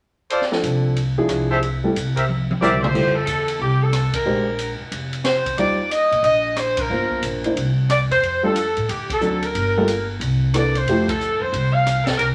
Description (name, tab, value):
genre	jazz, big band swing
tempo	182 BPM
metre	4/4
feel	swing 64% on 8ths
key	F major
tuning	A4 = 439 Hz
part	warm trumpet section	stabs	0.3-2.8 s	F4 to E5	-25 LUFS	equal	none
part	swinging big-band drum kit	drums	0.3-12.3 s	crash cymbal, hi-hat, kick drum, ride cymbal, rim click, snare drum, toms	-30 LUFS	equal	none
part	warm grand piano	accompaniment	0.5-11.1 s	E3 to C5	-25 LUFS	equal	none
part	upright bass	bass	0.6-12.3 s	F1 to Bb2	-26 LUFS	equal	none
part	warm saxophone section	melody	2.6-12.3 s	G4 to F5	-22 LUFS	equal	none
room	wet studio reverb, RT60 0.7 s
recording	none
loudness	-20 LUFS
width	mono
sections	0.3-2.9 A section; 2.9-12.3 B section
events	drum fill 2.3-2.9; band accent 4.1, 6.7, 9.0, 11.0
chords	0.3 F6; 1.0 E7b9; 1.6 Am7; 2.3 C7; 2.9 Fmaj9; 4.3 Bb13; 5.6 Eb69; 6.9 Gm7; 7.6 C; 8.2 F69; 8.9 D7; 9.5 Gm9; 10.2 C13; 10.9 Fmaj9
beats	| 0.30 0.63 0.96 1.29 | 1.62 1.95 2.28 2.61 | 2.94 3.27 3.60 3.93 | 4.26 4.59 4.92 5.25 | 5.58 5.91 6.24 6.57 | 6.90 7.23 7.56 7.89 | 8.22 8.55 8.88 9.21 | 9.54 9.87 10.20 10.54 | 10.87 11.20 11.53 11.86 | 12.19